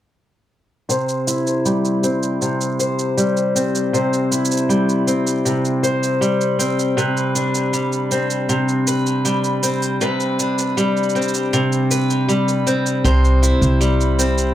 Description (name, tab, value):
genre	folktronica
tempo	79 BPM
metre	4/4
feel	straight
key	C major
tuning	A4 = 440 Hz
part	picked steel-string acoustic guitar	arpeggios	0.9-14.5 s	C3 to C5	-17 LUFS	equal	vintage 12-bit sampler grit, low-pass filter, tape echo
part	shaker	drums	0.9-14.5 s	none	-25 LUFS	right 3 dB	overdrive
part	upright bass	bass	13.0-14.5 s	C2	-15 LUFS	right 1 dB	none
room	light reverb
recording	none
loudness	-16 LUFS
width	side -12 dB against mid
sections	0.9-14.5 A section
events	filter sweep on steel-string acoustic guitar 0.9-14.5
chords	0.9 C; 7.0 G/C; 13.0 C